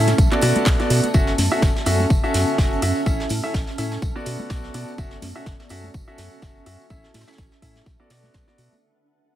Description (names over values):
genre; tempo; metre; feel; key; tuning
piano house; 125 BPM; 4/4; swing 55% on 16ths; F# minor; A4 = 440 Hz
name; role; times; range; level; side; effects
clear concert grand piano; riff; 0.0-8.7 s; B3 to E5; -24 LUFS; equal; sidechain pumping, low-pass filter, digital delay
organ-like FM bass; bass; 0.0-8.7 s; F#1 to B2; -23 LUFS; equal; sidechain pumping
granular cloud pad; texture; 0.0-8.8 s; B3 to A5; -29 LUFS; right 2 dB; built-in reverb, sidechain pumping
house drum kit; drums; 0.1-8.7 s; handclaps, hi-hat; -28 LUFS; right 2 dB; none
vintage brush drum kit; drums; 0.1-8.7 s; hi-hat, snare drum, tambourine; -35 LUFS; equal; high-pass filter on hats, high-pass filter on snare, high-pass filter on perc, high-pass filter on room
congas and tambourine; percussion; 0.1-8.8 s; none; -32 LUFS; left 2 dB; none
electronic kick drum; drums; 0.2-8.4 s; none; -20 LUFS; equal; none
room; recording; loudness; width
light reverb, small room reverb; heavily compressed radio sound, multiband compression; -18 LUFS; side -12 dB against mid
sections
0.0-8.8 A section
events
fade-out 0.0-8.8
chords
0.2 Bm7; 1.1 F#m7; 3.1 A; 4.0 Bm7; 5.0 F#m7; 6.9 A; 7.9 Bm7